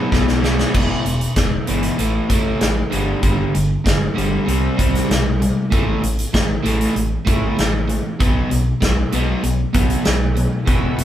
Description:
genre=classic rock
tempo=97 BPM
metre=4/4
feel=straight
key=unclear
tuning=A4 = 440 Hz
part: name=crunchy overdriven guitar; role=riff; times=0.0-11.0 s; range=E2 to C4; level=-23 LUFS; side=left 3 dB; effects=none
part: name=crunchy overdriven guitar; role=riff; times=0.0-11.0 s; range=E2 to C4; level=-23 LUFS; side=right 3 dB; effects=spring reverb
part: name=fingered electric bass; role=bass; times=0.1-11.0 s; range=E1 to C2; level=-22 LUFS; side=equal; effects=none
part: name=big rock drum kit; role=drums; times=0.1-11.0 s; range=crash cymbal, hi-hat, kick drum, snare drum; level=-19 LUFS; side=equal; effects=none
part: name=overdriven tonewheel organ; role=sustained chords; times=10.7-11.0 s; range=B3 to E5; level=-28 LUFS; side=equal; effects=slow rotary speaker
room=moderate studio reverb, RT60 0.8 s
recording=band playing live in one room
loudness=-16 LUFS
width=side -11 dB against mid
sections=0.7-11.0 A section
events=drum fill 0.0-0.7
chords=0.0 B5; 0.7 E5; 2.0 A5; 2.9 G5; 4.5 C5; 5.7 A5; 8.2 B5

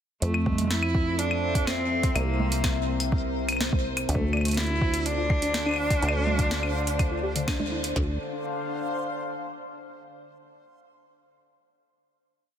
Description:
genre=IDM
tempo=124 BPM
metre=4/4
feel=straight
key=D minor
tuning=A4 = 440 Hz
part: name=bright cello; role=melody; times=0.2-7.5 s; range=A3 to E4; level=-29 LUFS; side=right 1 dB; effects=vintage 12-bit sampler grit, tape echo
part: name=warbly tape-like pad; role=sustained chords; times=1.0-9.9 s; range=C3 to F5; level=-33 LUFS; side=left 2 dB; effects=chorus, built-in reverb, vintage 12-bit sampler grit
part: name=deep acid bass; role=bass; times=0.2-8.2 s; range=C2 to F2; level=-29 LUFS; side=equal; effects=none
part: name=electro analog drum machine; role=drums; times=0.2-7.9 s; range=claves, congas, hi-hat, snare drum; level=-31 LUFS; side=equal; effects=digital delay
part: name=backwards swelling texture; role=texture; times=0.8-8.0 s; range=C5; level=-40 LUFS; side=right 1 dB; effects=built-in reverb
part: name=glitchy drum kit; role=drums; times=0.5-8.1 s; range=kick drum, snare drum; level=-26 LUFS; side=equal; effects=overdrive
part: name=warbly dusty pluck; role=arpeggios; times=4.1-8.2 s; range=D3 to D5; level=-35 LUFS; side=left 3 dB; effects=chorus, ping-pong delay
room=light reverb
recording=dense, heavily limited modern master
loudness=-24 LUFS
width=side -9 dB against mid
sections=0.2-8.0 groove; 8.0-9.9 final chord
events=band accent 7.5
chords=0.2 Fmaj7; 2.2 C7; 4.1 Dm7

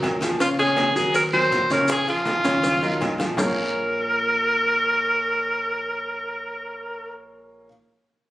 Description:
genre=latin, salsa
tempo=161 BPM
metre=4/4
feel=straight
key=Bb minor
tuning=A4 = 440 Hz
part: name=clear baby grand piano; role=accompaniment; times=0.0-7.7 s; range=Db3 to F5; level=-26 LUFS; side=equal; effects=none
part: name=upright bass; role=bass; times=0.0-7.7 s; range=Bb1 to Eb2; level=-36 LUFS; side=equal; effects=none
part: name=congas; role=percussion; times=0.0-3.5 s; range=none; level=-32 LUFS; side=left 1 dB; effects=none
part: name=cowbell and bongos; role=percussion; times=0.0-3.5 s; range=none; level=-31 LUFS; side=left 2 dB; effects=none
part: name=guiro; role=percussion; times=0.0-3.5 s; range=none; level=-36 LUFS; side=left 1 dB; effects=none
part: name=maracas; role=percussion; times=0.0-3.5 s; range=none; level=-38 LUFS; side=left 2 dB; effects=none
part: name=timbales and agogo bells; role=percussion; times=0.0-3.5 s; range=none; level=-33 LUFS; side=right 2 dB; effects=none
part: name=bright tenor saxophone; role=melody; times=0.4-7.1 s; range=F4 to C5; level=-21 LUFS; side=equal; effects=none
room=wet large studio reverb, RT60 1.2 s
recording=recorded on a phone in the room, club ambience, compression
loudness=-19 LUFS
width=side -16 dB against mid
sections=0.0-3.4 A section; 3.4-6.4 B section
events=drum fill 1.9-3.4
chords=0.4 Ebm7; 1.9 Bbm7; 2.6 Ebm7; 3.4 Bbm7

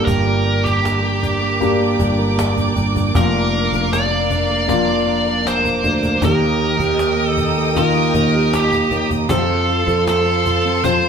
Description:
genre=pop ballad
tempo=78 BPM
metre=4/4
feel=straight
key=Bb major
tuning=A4 = 441 Hz
part: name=biting lead guitar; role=melody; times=0.0-11.1 s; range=G4 to D5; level=-20 LUFS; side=right 1 dB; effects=overdrive
part: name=dark concert grand piano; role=accompaniment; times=0.0-11.1 s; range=G2 to C5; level=-22 LUFS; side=left 3 dB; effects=none
part: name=clear studio string section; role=sustained chords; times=0.0-11.1 s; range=Bb4 to Eb6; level=-24 LUFS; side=equal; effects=none
part: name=fingerpicked steel-string acoustic guitar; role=arpeggios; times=0.0-11.1 s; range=G2 to Bb4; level=-22 LUFS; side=right 5 dB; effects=none
part: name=sustaining fretless electric bass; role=bass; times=0.0-11.1 s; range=F1 to F2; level=-22 LUFS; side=equal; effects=none
part: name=cajon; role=drums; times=0.1-11.0 s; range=none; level=-25 LUFS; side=equal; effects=none
room=wet studio reverb, RT60 0.8 s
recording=band playing live in one room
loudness=-14 LUFS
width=side -6 dB against mid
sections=0.0-11.1 A section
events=none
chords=0.0 Gm; 3.1 Bb/F; 6.2 Eb; 9.3 F

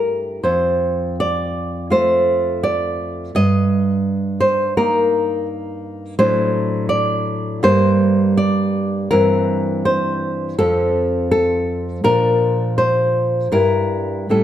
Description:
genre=romantic piece for solo classical guitar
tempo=82 BPM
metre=4/4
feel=rubato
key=D minor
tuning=A4 = 441 Hz
part: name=nylon-string guitar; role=solo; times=0.0-14.4 s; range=F2 to Eb5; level=-15 LUFS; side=equal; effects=none
room=light reverb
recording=none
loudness=-15 LUFS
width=side -11 dB against mid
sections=0.0-14.4 A section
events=none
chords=0.4 Dm/F; 3.3 Eb/G; 6.2 D7/A; 7.6 Gm; 9.1 C7/G; 10.6 F; 12.1 Bb; 13.5 Edim/G

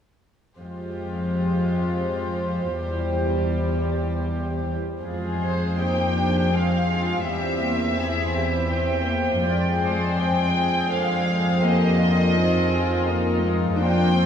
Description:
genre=cinematic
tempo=74-86 BPM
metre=3/4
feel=rubato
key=F dorian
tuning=A4 = 445 Hz
part: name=warm studio violin section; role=second line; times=0.6-14.3 s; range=F4 to D5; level=-28 LUFS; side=left 1 dB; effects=none
part: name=warm studio viola section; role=accompaniment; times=0.6-14.3 s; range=D3 to G5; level=-27 LUFS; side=right 1 dB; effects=none
part: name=dark chamber cello section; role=bass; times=0.6-14.3 s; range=E2 to F2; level=-24 LUFS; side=equal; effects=none
part: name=rich studio violin section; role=melody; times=5.4-14.3 s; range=C5 to G5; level=-27 LUFS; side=left 1 dB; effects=none
room=wet cathedral reverb, RT60 6.0 s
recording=in a vast, echoing space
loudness=-20 LUFS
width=side -8 dB against mid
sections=0.6-5.0 A section; 5.0-14.3 B section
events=none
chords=0.6 Fmadd9; 2.7 C/E; 5.0 Fmadd9; 7.3 C/E; 9.4 Fmadd9; 11.6 Bbsus4/F

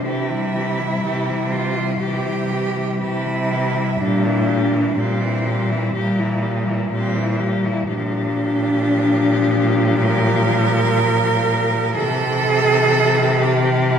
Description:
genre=classical, lyrical piece for cello ensemble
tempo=61 BPM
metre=4/4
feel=rubato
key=C major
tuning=A4 = 436 Hz
part: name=rich cello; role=melody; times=0.0-14.0 s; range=E4 to G4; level=-26 LUFS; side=left 5 dB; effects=none
part: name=clear cello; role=second line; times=0.0-14.0 s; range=G3 to Bb4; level=-20 LUFS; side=right 2 dB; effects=none
part: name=clear cello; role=accompaniment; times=0.0-14.0 s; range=E3 to G3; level=-25 LUFS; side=left 1 dB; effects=none
part: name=rich cello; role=bass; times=0.1-14.0 s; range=Bb2 to C3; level=-21 LUFS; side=equal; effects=none
room=wet concert hall reverb, RT60 2.3 s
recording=heard from further back in the room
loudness=-16 LUFS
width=side -8 dB against mid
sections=0.0-14.0 A section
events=none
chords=0.1 C; 4.0 C7/Bb; 7.9 Gm7/Bb; 12.0 C

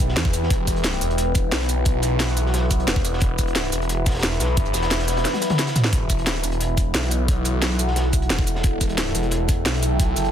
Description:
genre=dark technical drum and bass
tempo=177 BPM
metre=4/4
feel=straight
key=E minor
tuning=A4 = 440 Hz
part: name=deep dark ambient pad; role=sustained chords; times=0.0-10.3 s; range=E4 to B5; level=-26 LUFS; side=left 1 dB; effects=chorus, built-in reverb, sidechain pumping
part: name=phased detuned saw bass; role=bass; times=0.0-10.3 s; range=E1 to E2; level=-23 LUFS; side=equal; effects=phaser, tube saturation
part: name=drum and bass drum kit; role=drums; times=0.0-10.2 s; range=hi-hat, shaker, snare drum, toms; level=-24 LUFS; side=equal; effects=none
part: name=electronic kick drum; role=drums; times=0.0-10.1 s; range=none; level=-21 LUFS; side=equal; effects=none
part: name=crunchy breakbeat drum kit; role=drums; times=0.1-10.3 s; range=hi-hat, snare drum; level=-34 LUFS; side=equal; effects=high-pass filter on hats, high-pass filter on snare, high-pass filter on room
room=digital ambience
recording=dense, heavily limited modern master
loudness=-19 LUFS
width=side -9 dB against mid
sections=0.0-10.3 A section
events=drum fill 5.2-5.9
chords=0.0 Emadd9

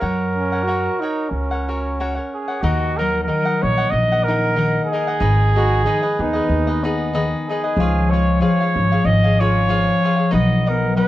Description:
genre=mexican folk, mariachi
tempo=94 BPM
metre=4/4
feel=swing 54% on 8ths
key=Eb minor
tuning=A4 = 440 Hz
part: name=mellow trumpet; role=melody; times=0.0-11.1 s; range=Gb4 to Eb5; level=-21 LUFS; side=right 1 dB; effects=plate reverb
part: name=cavaquinho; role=accompaniment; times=0.0-11.1 s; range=Eb4 to F#5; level=-26 LUFS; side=left 2 dB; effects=none
part: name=upright bass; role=bass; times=0.0-11.0 s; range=Ab1 to F#2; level=-20 LUFS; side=equal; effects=none
part: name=mellow trumpet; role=second line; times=0.4-7.3 s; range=Cb4 to Ab4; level=-24 LUFS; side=right 2 dB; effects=none
part: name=concert harp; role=arpeggios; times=2.6-11.1 s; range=Eb3 to F5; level=-21 LUFS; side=left 2 dB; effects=slapback echo
room=moderate studio reverb, RT60 0.6 s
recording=worn, warbling old tape, cassette tape, warbly pitch drift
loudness=-16 LUFS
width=side -14 dB against mid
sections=0.0-2.6 A section; 2.6-11.1 B section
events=none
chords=0.0 F#; 2.6 Ebm; 5.2 Abm; 7.8 Db; 10.3 B

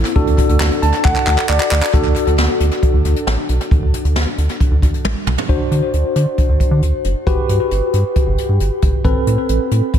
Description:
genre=synth-pop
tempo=135 BPM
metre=4/4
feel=straight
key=unclear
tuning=A4 = 444 Hz
part: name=tine electric piano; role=accompaniment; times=0.0-10.0 s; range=C4 to A5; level=-19 LUFS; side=left 1 dB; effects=medium stereo tremolo, tape echo, shimmer reverb
part: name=rubbery square bass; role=bass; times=0.0-9.8 s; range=F#1 to D3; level=-16 LUFS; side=equal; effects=none
part: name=jazz brush drum kit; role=drums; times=0.0-10.0 s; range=handclaps, hi-hat, kick drum, snare drum, toms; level=-17 LUFS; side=equal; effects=tape echo
room=light reverb, small room ambience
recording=echo-heavy mix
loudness=-13 LUFS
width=side -9 dB against mid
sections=0.0-1.9 A section; 1.9-5.5 B section; 5.5-10.0 C section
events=tine electric piano fill 0.6-1.9; drum fill 1.0-1.9, 5.0-5.5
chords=0.2 D; 5.5 D7; 7.3 Gmaj7; 9.0 Amadd9

